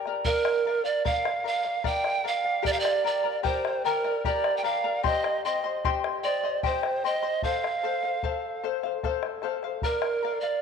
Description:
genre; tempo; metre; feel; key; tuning
andean folk, Andean ensemble; 75 BPM; 3/4; straight; unclear; A4 = 440 Hz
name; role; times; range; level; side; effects
charango; accompaniment; 0.0-10.6 s; G4 to C6; -29 LUFS; left 8 dB; none
bombo; percussion; 0.1-10.2 s; none; -34 LUFS; left 3 dB; none
breathy polished pan flute; melody; 0.2-10.6 s; Bb4 to G5; -27 LUFS; right 4 dB; none
room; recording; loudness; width
wet plate reverb, RT60 2.9 s; 1960s-style stereo; -24 LUFS; side -6 dB against mid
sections
0.3-10.6 A section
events
none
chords
0.3 Bb; 2.6 Gm; 5.0 Cm; 7.4 F; 9.8 Bb

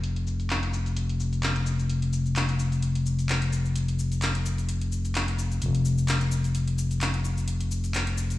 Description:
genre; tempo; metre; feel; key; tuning
bass house; 129 BPM; 4/4; swing 55% on 16ths; unclear; A4 = 441 Hz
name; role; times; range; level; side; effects
growling FM bass; bass; 0.0-8.4 s; F1; -25 LUFS; left 1 dB; tube saturation
garage drum kit; drums; 0.0-8.4 s; cabasa, handclaps, hi-hat; -32 LUFS; equal; low-pass filter on hats, low-pass filter on snare, low-pass filter on perc, low-pass filter on room
room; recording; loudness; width
light reverb; played on a big sound system in a bare room, stone room reverb, small room ambience; -24 LUFS; side -16 dB against mid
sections
0.0-8.4 A section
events
none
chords
none

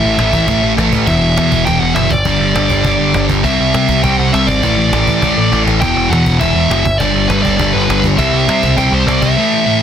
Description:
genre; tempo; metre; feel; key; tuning
punk rock; 203 BPM; 4/4; straight; unclear; A4 = 440 Hz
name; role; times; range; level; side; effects
biting lead guitar; melody; 0.0-9.8 s; B4 to G5; -16 LUFS; equal; overdrive
sludgy distorted guitar; riff; 0.0-9.8 s; E2 to C4; -13 LUFS; equal; overdrive
growling picked electric bass; bass; 0.0-9.3 s; E1 to C3; -17 LUFS; equal; overdrive
cajon; drums; 0.2-9.3 s; none; -22 LUFS; equal; none
room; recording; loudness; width
little or no reverb; dense, heavily limited modern master; -10 LUFS; side -8 dB against mid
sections
0.0-9.8 A section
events
drum fill 5.5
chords
0.0 A5; 1.1 E5; 2.1 G5; 3.4 C; 4.6 A5; 5.8 Em; 6.9 G; 8.2 C

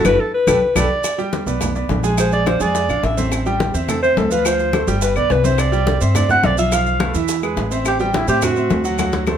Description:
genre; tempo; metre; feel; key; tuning
Afro-Cuban jazz; 212 BPM; 4/4; straight; unclear; A4 = 440 Hz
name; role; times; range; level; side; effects
breathy alto saxophone; melody; 0.0-8.9 s; B3 to F#5; -18 LUFS; equal; none
upright bass; bass; 0.0-9.4 s; F#1 to A2; -21 LUFS; equal; none
claves; percussion; 0.0-9.4 s; none; -29 LUFS; left 7 dB; none
congas; percussion; 0.0-9.3 s; none; -24 LUFS; left 2 dB; none
clear grand piano; accompaniment; 0.1-9.4 s; E3 to Ab5; -22 LUFS; right 3 dB; none
bongos; percussion; 0.1-9.4 s; none; -28 LUFS; left 5 dB; none
maracas; percussion; 0.1-9.4 s; none; -30 LUFS; right 7 dB; none
room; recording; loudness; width
moderate studio reverb, RT60 0.8 s; none; -15 LUFS; side -9 dB against mid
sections
0.0-1.0 A section; 1.0-9.4 A section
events
band accent 0.0-1.0; alto saxophone solo 0.0-9.4; drum fill 0.6-1.0, 9.0-9.4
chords
0.5 Bm7; 1.0 Bb13b9; 2.2 Bb9; 3.3 Am7; 4.5 Dm7; 5.0 G; 5.6 Cadd9; 6.7 Fmaj7#11/B; 7.3 E; 7.9 Am7

